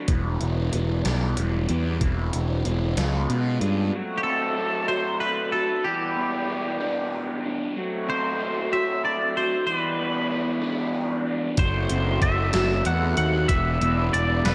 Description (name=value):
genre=indie rock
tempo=63 BPM (dotted quarters)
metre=6/8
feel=straight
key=E minor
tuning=A4 = 440 Hz
part: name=raw garage guitar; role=riff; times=0.0-14.5 s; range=C#3 to A4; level=-32 LUFS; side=equal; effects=overdrive, phaser
part: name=raw garage guitar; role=riff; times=0.0-14.5 s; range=E2 to G#4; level=-33 LUFS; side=equal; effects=overdrive, subtle chorus
part: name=fuzz picked electric bass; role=bass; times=0.1-3.9, 11.6-14.5 s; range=E1 to B2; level=-26 LUFS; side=equal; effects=overdrive
part: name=gated 80s digital drum machine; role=drums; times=0.1-3.8, 11.6-14.5 s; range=hi-hat, kick drum, snare drum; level=-30 LUFS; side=equal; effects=gated reverb, gated reverb snare
part: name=twangy electric guitar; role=melody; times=4.2-14.5 s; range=G4 to F#5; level=-28 LUFS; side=equal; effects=analog chorus, delay
room=wet lush hall reverb, RT60 2.7 s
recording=dreamy mix soaked in reverb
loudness=-24 LUFS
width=mono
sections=0.0-3.9 A section; 3.9-14.5 B section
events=none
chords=0.1 Em; 2.0 C/E; 3.0 C#7; 3.9 F#dim; 5.8 Em7; 7.8 F#dim; 9.7 Em7; 11.6 F#dim; 13.5 Em7